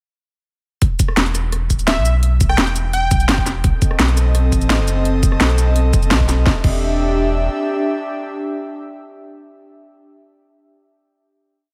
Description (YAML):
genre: liquid drum and bass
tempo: 170 BPM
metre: 4/4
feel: straight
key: E minor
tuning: A4 = 440 Hz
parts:
  - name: warm sub bass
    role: bass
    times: 0.8-7.5 s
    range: D1 to B1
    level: -19 LUFS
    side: equal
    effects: tube saturation
  - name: drum and bass drum kit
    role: drums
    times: 0.8-6.7 s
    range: crash cymbal, hi-hat, rim click, shaker, snare drum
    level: -22 LUFS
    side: equal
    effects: overdrive
  - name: electronic kick drum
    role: drums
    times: 0.8-6.7 s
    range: none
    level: -19 LUFS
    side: equal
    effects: overdrive
  - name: plucky unison lead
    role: melody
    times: 1.9-3.4 s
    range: E5 to G5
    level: -25 LUFS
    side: equal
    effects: tape echo
  - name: airy breathy pad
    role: sustained chords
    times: 3.6-9.7 s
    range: C4 to E5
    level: -24 LUFS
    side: equal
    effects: chorus
room: light reverb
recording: none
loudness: -17 LUFS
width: mono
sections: 0.8-6.5 drop; 6.5-9.3 final chord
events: drop 0.8-6.5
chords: 0.8 Em; 3.6 B7b9; 6.5 Em7